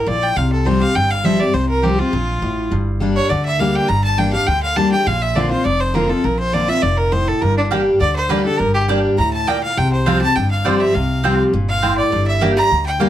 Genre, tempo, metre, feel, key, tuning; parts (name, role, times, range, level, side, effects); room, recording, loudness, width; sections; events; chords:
bluegrass; 204 BPM; 4/4; straight; G dorian; A4 = 440 Hz
clear fiddle; melody; 0.0-13.1 s; D4 to Bb5; -19 LUFS; equal
picked steel-string acoustic guitar; accompaniment; 0.0-13.1 s; F2 to G4; -18 LUFS; left 1 dB
upright bass; bass; 0.0-13.1 s; F1 to D2; -21 LUFS; equal
mandolin; stabs; 7.7-13.1 s; Bb3 to G5; -21 LUFS; right 4 dB; slapback echo
moderate studio reverb, RT60 0.6 s; -14 LUFS; side -12 dB against mid
0.0-13.1 A section
fiddle solo 0.0-13.1
0.4 Csus4; 2.7 Gm; 5.1 Bbadd9; 7.4 Gm; 9.8 Csus4; 12.1 Gm